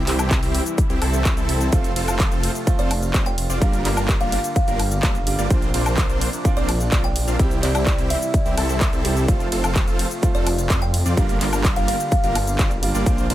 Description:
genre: EDM, festival progressive house.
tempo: 127 BPM.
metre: 4/4.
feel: straight.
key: F major.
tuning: A4 = 440 Hz.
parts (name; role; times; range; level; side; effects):
lush unison pad; sustained chords; 0.0-13.3 s; C3 to F4; -31 LUFS; equal; none.
big supersaw lead; riff; 0.0-13.3 s; G3 to F5; -27 LUFS; right 1 dB; sidechain pumping, dub echo.
detuned saw bass; bass; 0.0-13.3 s; F1 to F2; -24 LUFS; equal; sidechain pumping.
big-room dance drum kit; drums; 0.1-13.3 s; handclaps, hi-hat, ride cymbal, shaker, woodblock; -27 LUFS; equal; none.
electronic kick drum; drums; 0.3-13.2 s; none; -20 LUFS; equal; none.
bright baby grand piano; accompaniment; 1.7-13.3 s; G2 to G4; -30 LUFS; right 5 dB; vintage 12-bit sampler grit, sidechain pumping.
kalimba; melody; 2.8-12.3 s; D5 to G5; -29 LUFS; equal; dub echo.
room: little or no reverb.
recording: none.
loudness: -18 LUFS.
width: side -14 dB against mid.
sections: 0.0-13.3 A section.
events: none.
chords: 0.0 C; 1.7 F; 3.6 Gm7; 5.5 Bbadd9; 7.4 C; 9.3 F; 11.2 Gm7.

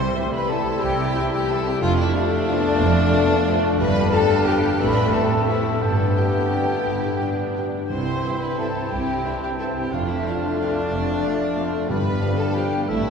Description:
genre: classical, orchestral ballroom waltz.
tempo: 165-202 BPM.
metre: 3/4.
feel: rubato.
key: C major.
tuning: A4 = 441 Hz.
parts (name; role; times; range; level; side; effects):
flute section; second line; 0.0-13.1 s; D5 to C6; -30 LUFS; equal; none.
rich chamber violin section; second line; 0.0-13.1 s; D4 to C5; -26 LUFS; left 3 dB; none.
warm clarinet; second line; 0.0-13.1 s; C4 to E4; -29 LUFS; left 3 dB; none.
warm oboe; second line; 0.0-13.1 s; E5 to G5; -32 LUFS; right 1 dB; none.
rich symphonic viola section; accompaniment; 0.0-13.1 s; G3 to G4; -32 LUFS; right 1 dB; none.
warm bassoon; accompaniment; 0.0-13.1 s; G3 to C4; -28 LUFS; right 1 dB; none.
concert harp; arpeggios; 0.0-13.1 s; F2 to G5; -28 LUFS; left 4 dB; none.
rich chamber cello section; bass; 0.0-13.1 s; F2 to C3; -29 LUFS; right 2 dB; none.
rich chamber double bass section; bass; 0.0-13.1 s; F1 to C2; -27 LUFS; right 2 dB; none.
timpani; percussion; 0.0-0.3, 7.9-8.4, 11.9-12.4 s; G2 to C3; -34 LUFS; right 2 dB; none.
rich studio violin section; melody; 0.2-12.7 s; E5 to G5; -42 LUFS; left 3 dB; none.
mellow French horn section; sustained chords; 0.2-12.7 s; G3 to G4; -36 LUFS; left 2 dB; none.
warm trombone section; sustained chords; 0.2-12.7 s; F2 to G3; -35 LUFS; right 2 dB; none.
room: wet cathedral reverb, RT60 5.9 s.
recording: heard from further back in the room.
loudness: -19 LUFS.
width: side -6 dB against mid.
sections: 0.0-13.1 A section.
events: none.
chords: 0.0 C; 1.8 Dm/F; 3.8 G7; 4.8 Am; 5.8 G; 7.9 C; 9.9 Dm/F; 11.9 G7.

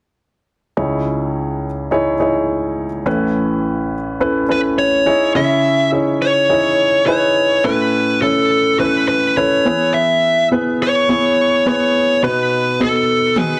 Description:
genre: piano-driven pop.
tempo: 105 BPM.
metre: 4/4.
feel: straight.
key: unclear.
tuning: A4 = 443 Hz.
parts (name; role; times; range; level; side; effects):
warm grand piano; accompaniment; 0.8-13.6 s; A1 to C#5; -19 LUFS; equal; none.
smooth overdriven lead guitar; melody; 4.5-13.6 s; A4 to E5; -17 LUFS; equal; none.
electronic toms; drums; 13.4-13.5 s; none; -23 LUFS; equal; none.
room: moderate studio reverb, RT60 0.7 s.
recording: dense, heavily limited modern master.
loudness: -16 LUFS.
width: mono.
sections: 0.8-5.4 A section; 5.4-13.6 B section.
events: drum fill 13.4.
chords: 0.8 C#madd9; 3.1 Aadd9; 5.1 C#madd9; 7.6 Aadd9; 9.6 E; 12.2 B.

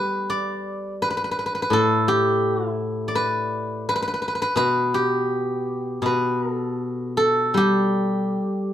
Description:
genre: chinese traditional, Chinese solo plucked strings.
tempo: 71-86 BPM.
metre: 4/4.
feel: rubato.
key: G gong mode.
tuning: A4 = 440 Hz.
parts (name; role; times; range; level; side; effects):
steel-string zither; solo; 0.0-8.7 s; A2 to D5; -20 LUFS; equal; none.
room: moderate large studio reverb, RT60 0.9 s.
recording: band playing live in one room, faint mains hum.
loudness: -20 LUFS.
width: side -11 dB against mid.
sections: 0.0-8.7 A section.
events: none.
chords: none.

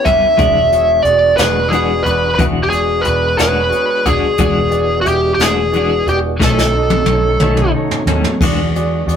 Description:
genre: slow blues.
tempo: 60 BPM (dotted quarters).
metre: 12/8.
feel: straight.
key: E mixolydian.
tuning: A4 = 437 Hz.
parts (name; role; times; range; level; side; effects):
biting lead guitar; melody; 0.0-7.7 s; F#4 to E5; -14 LUFS; equal; overdrive.
bright grand piano; accompaniment; 0.0-9.2 s; D#4 to E5; -23 LUFS; right 1 dB; none.
tonewheel organ; sustained chords; 0.0-9.2 s; E3 to G4; -25 LUFS; right 2 dB; slow rotary speaker, overdrive, chorus vibrato.
clean electric guitar; accompaniment; 0.1-8.6 s; B2 to F#4; -20 LUFS; left 4 dB; tremolo.
vintage muted fingered electric bass; bass; 0.1-9.2 s; E1 to E2; -20 LUFS; equal; none.
jazz brush drum kit; drums; 0.1-9.2 s; crash cymbal, hi-hat, kick drum, snare drum, toms; -18 LUFS; left 1 dB; none.
room: moderate studio reverb, RT60 0.6 s.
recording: rough rehearsal-room recording, warm saturation.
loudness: -11 LUFS.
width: side -8 dB against mid.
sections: 0.0-8.4 A section.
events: drum fill 6.4-8.4.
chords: 0.4 E9; 6.4 B9; 8.4 E9.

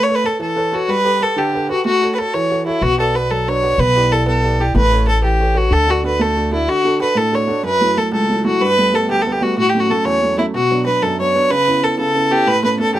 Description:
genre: celtic folk, Celtic jig.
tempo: 124 BPM (dotted quarters).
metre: 6/8.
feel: straight.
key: D major.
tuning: A4 = 441 Hz.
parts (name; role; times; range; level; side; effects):
warm fiddle; melody; 0.0-13.0 s; E4 to C#5; -16 LUFS; equal; none.
warm upright piano; accompaniment; 0.0-13.0 s; C#2 to D5; -20 LUFS; right 2 dB; none.
upright bass; bass; 2.8-6.7 s; A1 to D2; -18 LUFS; equal; none.
room: little or no reverb.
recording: close, detailed microphones.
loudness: -14 LUFS.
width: side -13 dB against mid.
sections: 0.0-6.7 A section; 6.7-13.0 A section.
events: none.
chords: 0.0 Aadd9; 0.9 Gadd9; 1.8 A6; 2.8 Bm; 3.8 Em7/B; 4.7 Aadd9; 5.7 D; 7.6 F#m7; 8.6 Gadd9; 9.6 A6; 10.5 Bm; 11.5 C#m7; 12.5 Aadd9.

